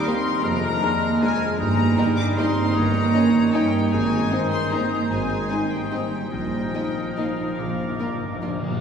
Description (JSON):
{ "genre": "classical", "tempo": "136-167 BPM", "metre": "3/4", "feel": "rubato", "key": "unclear", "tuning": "A4 = 441 Hz", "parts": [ { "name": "warm symphonic violin section", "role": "melody", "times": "0.0-8.4 s", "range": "F5 to D6", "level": "-29 LUFS", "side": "left 5 dB", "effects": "none" }, { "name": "bright clarinet", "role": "second line", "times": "0.0-8.6 s", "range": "D4 to F4", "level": "-32 LUFS", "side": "left 1 dB", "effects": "none" }, { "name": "clear oboe", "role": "second line", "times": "0.0-8.6 s", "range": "Bb4 to Db5", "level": "-34 LUFS", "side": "equal", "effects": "none" }, { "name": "silver concert flute", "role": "second line", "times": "0.0-8.6 s", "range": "D6 to F6", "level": "-33 LUFS", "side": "left 3 dB", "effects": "none" }, { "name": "mellow bassoon", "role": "accompaniment", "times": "0.0-8.6 s", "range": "Eb3 to Ab3", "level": "-31 LUFS", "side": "equal", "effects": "none" }, { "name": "concert harp", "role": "arpeggios", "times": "0.0-8.8 s", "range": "F2 to Db6", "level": "-31 LUFS", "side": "left 3 dB", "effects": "none" }, { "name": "warm studio cello section", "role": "bass", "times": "0.0-8.4 s", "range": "F3 to D4", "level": "-25 LUFS", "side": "right 4 dB", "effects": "none" }, { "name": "warm chamber violin section", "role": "second line", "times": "0.1-8.5 s", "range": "Eb4 to Eb5", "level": "-36 LUFS", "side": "left 3 dB", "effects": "none" }, { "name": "dark chamber viola section", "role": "accompaniment", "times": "0.1-8.5 s", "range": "Bb3 to Eb4", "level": "-32 LUFS", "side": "right 1 dB", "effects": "none" }, { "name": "mellow French horn section", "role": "sustained chords", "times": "0.1-8.6 s", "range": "Eb3 to Eb4", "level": "-32 LUFS", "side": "left 3 dB", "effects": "none" }, { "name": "clear chamber double bass section", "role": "bass", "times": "0.4-7.9 s", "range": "G1 to F2", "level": "-30 LUFS", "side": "right 1 dB", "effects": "none" }, { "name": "mellow tuba", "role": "bass", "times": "0.4-7.9 s", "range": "F1 to Bb1", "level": "-33 LUFS", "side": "right 2 dB", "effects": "none" }, { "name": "timpani", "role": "percussion", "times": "7.6-8.8 s", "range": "Bb2", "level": "-32 LUFS", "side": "right 1 dB", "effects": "none" } ], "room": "wet cathedral reverb, RT60 7.7 s", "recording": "recorded in a church or concert hall, studio reverb", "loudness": "-20 LUFS", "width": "side -7 dB against mid", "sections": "0.0-8.8 A section", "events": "timpani fill 7.6-8.8", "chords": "0.4 Bb7/F; 1.6 Eb/G; 2.8 Eb7/G; 3.9 Ab; 6.3 Bbsus4; 7.6 Bb" }